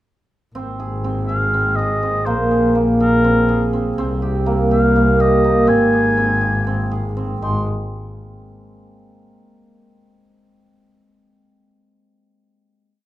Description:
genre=contemporary instrumental, chamber music in an uneven meter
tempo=245 BPM (eighths)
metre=7/8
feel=straight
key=Ab major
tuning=A4 = 440 Hz
part: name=warm double bass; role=bass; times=0.5-7.7 s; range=Ab1 to C2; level=-21 LUFS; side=left 1 dB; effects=none
part: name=cimbalom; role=arpeggios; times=0.6-9.7 s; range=Ab3 to Ab4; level=-17 LUFS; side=right 1 dB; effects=none
part: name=warm oboe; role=melody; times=1.3-7.7 s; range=Bb4 to C6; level=-21 LUFS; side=left 1 dB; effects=none
room=light reverb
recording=close, detailed microphones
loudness=-15 LUFS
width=side -14 dB against mid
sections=0.6-7.4 A section; 7.4-9.1 final chord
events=none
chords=0.6 Ab; 2.3 Abadd9/Bb; 4.0 Cm7; 5.7 Ab; 7.4 N.C.

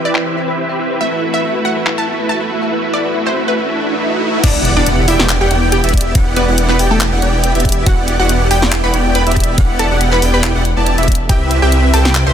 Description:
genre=future bass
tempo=140 BPM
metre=4/4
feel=swing 54% on 16ths, half-time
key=E minor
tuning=A4 = 441 Hz
part: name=ethereal airy pad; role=sustained chords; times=0.0-3.6 s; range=E3 to B4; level=-26 LUFS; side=left 1 dB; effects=ensemble chorus, built-in reverb, sidechain pumping
part: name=supersaw chords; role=riff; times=0.0-12.3 s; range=A3 to A5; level=-17 LUFS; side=right 1 dB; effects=analog chorus, cassette tape, sidechain pumping, low-pass filter
part: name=wide unison pluck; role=melody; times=0.1-12.3 s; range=A3 to C6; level=-20 LUFS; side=right 1 dB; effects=sidechain pumping, digital delay
part: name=thumb-piano-like synth pluck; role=arpeggios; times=0.1-3.6 s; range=E4 to E5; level=-25 LUFS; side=left 3 dB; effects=chorus, sidechain pumping, digital delay
part: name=pop drum kit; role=drums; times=0.1-12.2 s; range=crash cymbal, finger snaps, handclaps, hi-hat, ride cymbal, snare drum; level=-19 LUFS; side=left 1 dB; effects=low-pass filter on snare, low-pass filter on hats, low-pass filter on cymbals
part: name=riser and impact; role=sound effects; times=2.6-6.2 s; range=none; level=-23 LUFS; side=left 1 dB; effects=none
part: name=airy dreamy lead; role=arpeggios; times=4.4-12.3 s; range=E5 to A5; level=-22 LUFS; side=equal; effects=chorus, sidechain pumping, digital delay
part: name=wide detuned saw bass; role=bass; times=4.4-12.3 s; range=E1 to C2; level=-15 LUFS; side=equal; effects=chorus, tube saturation, sidechain pumping
part: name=electronic kick drum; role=drums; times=4.4-11.4 s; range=none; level=-13 LUFS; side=equal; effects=none
room=light reverb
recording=none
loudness=-11 LUFS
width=side -9 dB against mid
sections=0.0-4.4 A section; 4.4-12.3 B section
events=riser 2.6-4.4; drop 4.4-12.3; impact 4.4-6.2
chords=0.0 Cmaj7; 1.0 B7sus4; 4.4 Em9; 11.3 Cmaj7

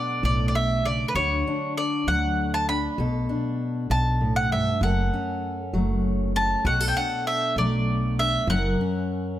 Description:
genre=folk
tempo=66 BPM (dotted quarters)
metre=6/8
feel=straight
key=B minor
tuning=A4 = 440 Hz
part: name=mandolin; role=melody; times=0.0-9.4 s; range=B4 to B5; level=-26 LUFS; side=equal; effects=none
part: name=fingerpicked steel-string acoustic guitar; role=accompaniment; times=0.0-9.4 s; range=F#2 to A#4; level=-27 LUFS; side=left 1 dB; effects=none
part: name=upright bass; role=bass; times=0.2-8.7 s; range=F#1 to D2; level=-26 LUFS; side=equal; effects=none
room=light reverb, small room ambience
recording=none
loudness=-22 LUFS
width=side -12 dB against mid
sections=0.0-9.4 A section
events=none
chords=0.0 Bm7; 1.2 D; 3.0 Bm7; 4.8 F#m; 6.7 Bm7; 8.5 F#

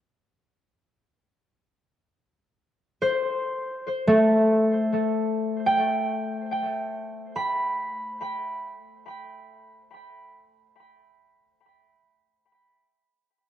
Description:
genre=ambient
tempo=free time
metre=none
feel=none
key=G major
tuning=A4 = 440 Hz
part: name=concert harp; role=solo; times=3.0-11.2 s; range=A3 to B5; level=-23 LUFS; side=equal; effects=tape echo
room=wet spring reverb, RT60 2.4 s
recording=echo-heavy mix, cassette tape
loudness=-22 LUFS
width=side -11 dB against mid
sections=0.0-1.2 A section; 1.2-13.5 B section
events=fade-out 10.3-13.5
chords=0.0 N.C.; 1.2 Gsus4; 8.0 N.C.

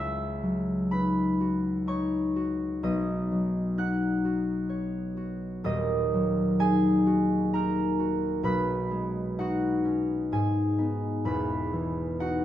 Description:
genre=classical, solo harp piece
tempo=64 BPM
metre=3/4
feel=rubato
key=unclear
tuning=A4 = 440 Hz
part: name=concert harp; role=solo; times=0.0-12.4 s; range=D#1 to F#6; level=-25 LUFS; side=equal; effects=none
room=light reverb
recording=minimal, uncompressed stereo recording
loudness=-25 LUFS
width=side -12 dB against mid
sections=0.0-12.4 A section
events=none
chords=0.0 C#m11; 2.8 Badd9; 5.6 D#m7; 8.4 B69; 10.3 G#m7; 11.2 Emaj7

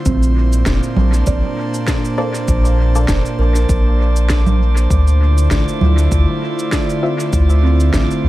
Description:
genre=ambient dub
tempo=99 BPM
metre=4/4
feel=swing 56% on 16ths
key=unclear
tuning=A4 = 439 Hz
part: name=airy breathy pad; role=sustained chords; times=0.0-8.3 s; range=Bb2 to A5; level=-21 LUFS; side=equal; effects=chorus
part: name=kalimba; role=arpeggios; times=0.1-8.3 s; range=C4 to D5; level=-25 LUFS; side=right 4 dB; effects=dub echo
part: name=soft dub sub bass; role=bass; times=0.1-8.3 s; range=F1 to D2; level=-13 LUFS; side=equal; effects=none
part: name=electronic kick drum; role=drums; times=0.1-8.1 s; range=none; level=-20 LUFS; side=equal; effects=overdrive
part: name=electronic shaker, snare drum and congas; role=drums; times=0.1-8.2 s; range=none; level=-23 LUFS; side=right 2 dB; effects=dub echo
part: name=drifting glass-harmonics texture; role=texture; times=0.4-8.3 s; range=D5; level=-28 LUFS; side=right 4 dB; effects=chorus, built-in reverb
part: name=filtered dub chord stab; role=stabs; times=2.2-3.1, 7.0-7.2 s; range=Bb3 to E5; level=-26 LUFS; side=left 3 dB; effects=chorus, dub echo
room=digital ambience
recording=echo-heavy mix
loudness=-12 LUFS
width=side -16 dB against mid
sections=0.0-8.3 A section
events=none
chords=0.1 Bbmaj7; 4.9 Dm9

